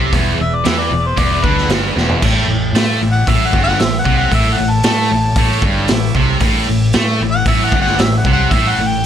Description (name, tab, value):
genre	blues rock power trio and southern rock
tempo	114 BPM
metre	4/4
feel	straight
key	A mixolydian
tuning	A4 = 441 Hz
part	overdriven tonewheel organ	sustained chords	0.0-9.1 s	A3 to D5	-28 LUFS	right 6 dB	slow rotary speaker
part	tight distorted guitar	riff	0.0-9.0 s	E2 to A3	-16 LUFS	equal	distortion
part	vintage muted fingered electric bass	bass	0.0-9.0 s	E1 to A2	-19 LUFS	right 1 dB	none
part	raw garage drum kit	drums	0.1-8.6 s	crash cymbal, hi-hat, kick drum, snare drum, toms	-17 LUFS	equal	none
part	mellow harmonica	melody	0.4-9.1 s	B4 to A5	-19 LUFS	left 2 dB	overdrive, plate reverb
room	light reverb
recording	none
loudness	-12 LUFS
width	side -9 dB against mid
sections	0.0-2.2 A section; 2.2-9.1 A section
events	drum fill 2.0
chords	0.1 E7; 2.2 A7